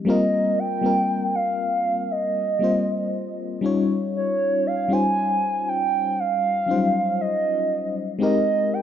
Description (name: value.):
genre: R&B.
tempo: 59 BPM.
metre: 4/4.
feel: straight.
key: unclear.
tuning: A4 = 440 Hz.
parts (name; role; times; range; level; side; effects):
FM electric piano with tremolo; accompaniment; 0.0-8.8 s; Gb3 to Db5; -24 LUFS; left 3 dB; none.
hollow clarinet-like synth lead; melody; 0.1-8.8 s; Db5 to Ab5; -22 LUFS; right 2 dB; chorus, ping-pong delay.
room: light reverb, digital ambience.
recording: dark, warm production.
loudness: -20 LUFS.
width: side -9 dB against mid.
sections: 0.0-8.8 A section.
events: none.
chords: 0.1 C7sus4; 3.6 Eb13; 8.2 Abmaj9.